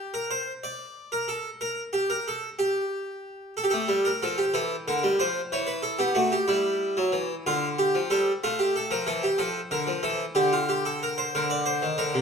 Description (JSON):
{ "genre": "classical, baroque-style two-part invention for harpsichord", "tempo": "62 BPM (dotted quarters)", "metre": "12/8", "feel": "straight", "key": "unclear", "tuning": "A4 = 440 Hz", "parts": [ { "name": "harpsichord", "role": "solo", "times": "0.0-12.2 s", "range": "C3 to D5", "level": "-24 LUFS", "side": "equal", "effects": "none" } ], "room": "wet stone room reverb, RT60 1.2 s", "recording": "none", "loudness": "-24 LUFS", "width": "side -6 dB against mid", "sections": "0.0-12.2 A section", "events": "none", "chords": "0.0 N.C.; 3.6 Dm (rootless); 5.5 C#dim/E (rootless); 7.5 Dm; 11.3 Gm (rootless)" }